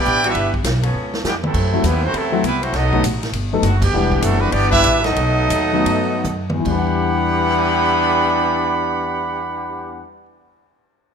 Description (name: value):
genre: jazz, big band swing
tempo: 140-202 BPM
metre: 4/4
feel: swing 63% on 8ths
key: E minor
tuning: A4 = 443 Hz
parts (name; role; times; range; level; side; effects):
- warm trumpet section; melody; 0.0-10.1 s; F#3 to B5; -20 LUFS; right 2 dB; none
- bright trombone section; second line; 0.0-10.0 s; A2 to G4; -23 LUFS; equal; none
- upright bass; bass; 0.0-10.0 s; E1 to G2; -22 LUFS; equal; none
- swinging big-band drum kit; drums; 0.0-7.6 s; crash cymbal, hi-hat, kick drum, ride cymbal, rim click, snare drum, toms; -25 LUFS; equal; none
- clear trombone section; sustained chords; 0.2-1.2 s; E3 to A4; -28 LUFS; left 1 dB; none
- warm concert grand piano; accompaniment; 1.7-10.2 s; E2 to F#5; -22 LUFS; left 4 dB; none
room: moderate echo chamber reverb, RT60 1.8 s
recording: minimal, uncompressed stereo recording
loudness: -15 LUFS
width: side -7 dB against mid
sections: 0.0-1.5 A section; 1.5-6.7 B section; 6.7-10.1 C section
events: drum fill 0.9-1.5, 6.2-6.7; band accent 3.8; slowing down 3.9-6.7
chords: 0.0 Em7; 0.9 C#7b13; 1.5 F#m7b5; 2.7 B7; 3.9 Em9; 5.2 B7; 6.7 Em9